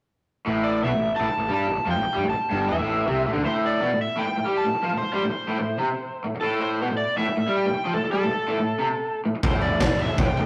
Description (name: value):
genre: garage rock duo or trio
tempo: 160 BPM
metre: 4/4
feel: straight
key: A minor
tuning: A4 = 440 Hz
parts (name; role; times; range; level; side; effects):
- raw garage guitar; riff; 0.5-10.5 s; G2 to G3; -27 LUFS; equal; overdrive
- fuzz picked electric bass; bass; 0.5-3.5, 9.4-10.5 s; G1 to G2; -32 LUFS; equal; overdrive, tube saturation
- overdriven slide guitar; melody; 0.6-10.5 s; A4 to A5; -29 LUFS; equal; none
- raw garage drum kit; drums; 9.4-10.5 s; kick drum, snare drum, toms; -24 LUFS; equal; none
room: wet stone room reverb, RT60 1.3 s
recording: rough rehearsal-room recording, warm saturation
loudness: -24 LUFS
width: mono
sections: 0.5-3.4 A section; 3.4-10.5 B section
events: none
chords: 0.5 A5; 3.4 Am